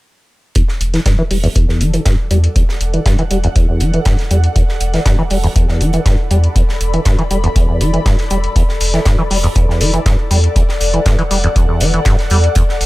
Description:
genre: acid house.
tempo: 120 BPM.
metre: 4/4.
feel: straight.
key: E minor.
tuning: A4 = 440 Hz.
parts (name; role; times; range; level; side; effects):
acid bass, saw; riff; 0.6-12.6 s; E2 to G3; -17 LUFS; equal; tube saturation, lush chorus, cassette tape, sidechain pumping.
crisp fusion drum kit; drums; 0.6-12.9 s; hi-hat, snare drum; -26 LUFS; right 2 dB; sidechain pumping on hats, high-pass filter on hats, high-pass filter on snare, high-pass filter on room.
electronic hi-hat; drums; 0.6-12.9 s; none; -23 LUFS; left 2 dB; none.
electronic kick drum; drums; 0.6-12.7 s; none; -14 LUFS; equal; none.
ethereal airy pad; texture; 1.4-12.9 s; A4 to B5; -23 LUFS; left 1 dB; ensemble chorus, built-in reverb, sidechain pumping.
warm sub bass; bass; 0.8-12.9 s; E1 to E2; -15 LUFS; equal; sidechain pumping.
room: little or no reverb.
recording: none.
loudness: -11 LUFS.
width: side -19 dB against mid.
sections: 0.6-12.9 A section.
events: filter sweep on acid bass 0.6-12.9.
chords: 0.6 Em7.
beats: | 0.56 1.06 1.56 2.06 | 2.56 3.06 3.56 4.06 | 4.56 5.06 5.56 6.06 | 6.56 7.06 7.56 8.06 | 8.56 9.06 9.56 10.06 | 10.56 11.06 11.56 12.06 | 12.56.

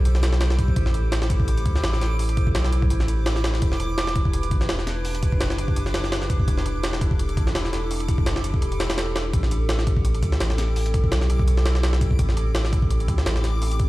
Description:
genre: drum and bass, jungle.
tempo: 168 BPM.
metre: 4/4.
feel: swing 54% on 16ths.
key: A minor.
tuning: A4 = 442 Hz.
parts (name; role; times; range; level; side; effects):
warbly tape-like pad; sustained chords; 0.0-13.9 s; C4 to C5; -31 LUFS; left 1 dB; chorus, built-in reverb, vintage 12-bit sampler grit.
saturated sub bass; bass; 0.0-13.9 s; E1 to D2; -23 LUFS; equal; none.
backwards swelling texture; texture; 0.2-13.9 s; D6; -36 LUFS; right 2 dB; built-in reverb.
jungle sampler-style drum kit; drums; 0.1-13.9 s; hi-hat, kick drum, snare drum; -23 LUFS; equal; none.
room: digital ambience.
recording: played on a big sound system in a bare room, large studio reverb, vinyl crackle.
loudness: -20 LUFS.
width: side -18 dB against mid.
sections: 0.0-13.9 A section.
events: none.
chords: 0.0 Am7; 3.6 Em7; 9.3 Am7.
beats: 0.05 0.41 | 0.76 1.12 1.48 1.83 | 2.19 2.55 2.90 3.26 | 3.62 3.98 4.33 4.69 | 5.05 5.41 5.76 6.12 | 6.48 6.83 7.19 7.55 | 7.91 8.26 8.62 8.98 | 9.33 9.69 10.05 10.40 | 10.76 11.12 11.48 11.83 | 12.19 12.55 12.90 13.26 | 13.62.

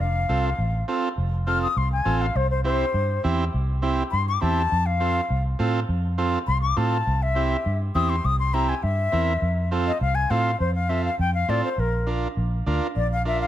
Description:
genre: latin, cumbia.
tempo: 204 BPM.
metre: 4/4.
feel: straight.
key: F major.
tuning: A4 = 442 Hz.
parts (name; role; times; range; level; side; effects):
silver concert flute; melody; 0.0-13.5 s; Bb4 to F6; -25 LUFS; left 4 dB; none.
vintage muted fingered electric bass; bass; 0.0-13.4 s; F1 to A2; -24 LUFS; equal; none.
overdriven combo organ; accompaniment; 0.3-13.5 s; C4 to Bb4; -28 LUFS; right 4 dB; spring reverb.
room: light reverb.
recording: close, detailed microphones.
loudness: -21 LUFS.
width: side -12 dB against mid.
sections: 0.0-1.2 A section; 1.2-10.6 B section; 10.6-13.5 C section.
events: flute solo 1.2-10.6.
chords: 0.0 F; 2.4 C; 4.7 F; 7.1 C; 9.4 F; 11.8 Bb.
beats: | 0.00 0.29 0.59 0.88 | 1.18 1.47 1.77 2.06 | 2.36 2.65 2.95 3.24 | 3.54 3.83 4.12 4.42 | 4.71 5.01 5.30 5.60 | 5.89 6.19 6.48 6.78 | 7.07 7.37 7.66 7.95 | 8.25 8.54 8.84 9.13 | 9.43 9.72 10.01 10.31 | 10.60 10.90 11.19 11.49 | 11.78 12.08 12.37 12.67 | 12.96 13.26.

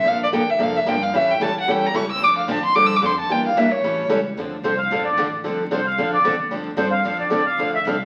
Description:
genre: acoustic string swing (jazz manouche).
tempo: 223 BPM.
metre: 4/4.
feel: swing 56% on 8ths.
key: D minor.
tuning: A4 = 443 Hz.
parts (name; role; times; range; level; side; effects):
warm violin; melody; 0.0-4.1 s; C#5 to E6; -21 LUFS; equal; none.
picked acoustic archtop guitar; accompaniment; 0.0-8.0 s; D3 to A4; -26 LUFS; equal; none.
upright bass; bass; 0.0-8.1 s; F1 to A2; -34 LUFS; equal; none.
picked steel-string acoustic guitar; accompaniment; 0.1-7.9 s; D3 to Bb4; -33 LUFS; equal; none.
accordion; second line; 4.6-8.0 s; C5 to F5; -23 LUFS; equal; none.
room: wet studio reverb, RT60 0.9 s.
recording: very old 78 rpm record, vinyl crackle.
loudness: -20 LUFS.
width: mono.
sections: 0.0-4.4 A section; 4.4-8.1 A section.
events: violin solo 0.0-4.4; accordion solo 4.4-8.1.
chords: 0.1 Bbmaj7; 1.1 A7; 2.2 Dm7; 3.3 Em7b5; 3.8 A7; 4.4 Dm7.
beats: | 0.06 0.33 0.60 0.87 | 1.14 1.41 1.68 1.95 | 2.21 2.48 2.75 3.02 | 3.29 3.56 3.83 4.09 | 4.36 4.63 4.90 5.17 | 5.44 5.71 5.97 6.24 | 6.51 6.78 7.05 7.32 | 7.58 7.85.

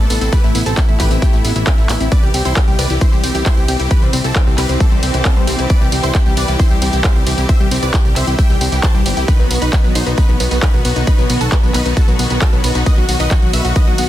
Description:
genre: uplifting trance.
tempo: 134 BPM.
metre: 4/4.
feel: straight.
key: unclear.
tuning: A4 = 438 Hz.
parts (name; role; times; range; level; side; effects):
big supersaw lead; melody; 0.0-14.1 s; B3 to A5; -22 LUFS; right 1 dB; sidechain pumping, digital delay.
wide unison pluck; second line; 0.0-14.1 s; B4 to A6; -27 LUFS; moving between left 4 dB and right 6 dB; auto-pan, sidechain pumping, tape echo.
rich symphonic string section; sustained chords; 0.0-14.1 s; C3 to G4; -25 LUFS; equal; sidechain pumping.
analog pluck; arpeggios; 0.0-14.1 s; D#3 to E4; -24 LUFS; left 4 dB; chorus, sidechain pumping, tape echo.
fat analog bass; bass; 0.0-14.1 s; G1 to C2; -18 LUFS; equal; sidechain pumping.
punchy analog drum machine; drums; 0.1-14.1 s; handclaps, hi-hat, ride cymbal, tambourine; -22 LUFS; right 1 dB; sidechain pumping on hats, sidechain pumping on perc, sidechain pumping on cymbals.
electronic kick drum; drums; 0.3-13.8 s; none; -13 LUFS; equal; none.
room: little or no reverb.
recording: dense, heavily limited modern master.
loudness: -12 LUFS.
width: side -13 dB against mid.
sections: 0.0-14.1 A section.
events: drum fill 1.9.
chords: 0.0 Amadd9; 2.1 C; 9.3 B.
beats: | 0.33 0.77 1.22 1.67 | 2.12 2.56 3.01 3.46 | 3.91 4.36 4.80 5.25 | 5.70 6.15 6.59 7.04 | 7.49 7.94 8.39 8.83 | 9.28 9.73 10.18 10.62 | 11.07 11.52 11.97 12.42 | 12.86 13.31 13.76.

